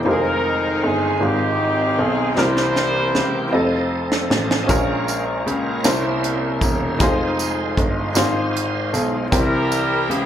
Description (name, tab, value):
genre	slow gospel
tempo	52 BPM (dotted quarters)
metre	6/8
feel	straight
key	F minor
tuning	A4 = 439 Hz
part	warm upright piano	accompaniment	0.0-10.3 s	Bb2 to G5	-23 LUFS	left 2 dB	slapback echo
part	bright tonewheel organ	sustained chords	0.0-10.3 s	Eb3 to Eb5	-27 LUFS	right 5 dB	fast rotary speaker, overdrive, chorus vibrato
part	warm grand piano	bass	0.0-10.3 s	E1 to Db2	-23 LUFS	equal	none
part	warm horn section	melody	0.1-3.9, 9.3-10.3 s	C4 to C5	-20 LUFS	equal	slapback echo
part	tight funk drum kit	drums	2.4-10.3 s	hi-hat, kick drum, snare drum	-22 LUFS	right 1 dB	none
part	tambourine	percussion	4.7-10.1 s	none	-30 LUFS	right 4 dB	none
room	light reverb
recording	live gig heard through the venue's PA, club reverb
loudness	-17 LUFS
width	side -10 dB against mid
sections	0.0-10.3 A section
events	drum fill 2.4-4.7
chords	0.1 Fm7; 2.4 C7; 3.5 F7; 4.7 Bbm7; 5.8 C7b9; 7.0 Fm7; 9.3 C7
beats	| 0.06 1.22 | 2.37 3.53 | 4.69 5.85 | 7.00 8.16 | 9.32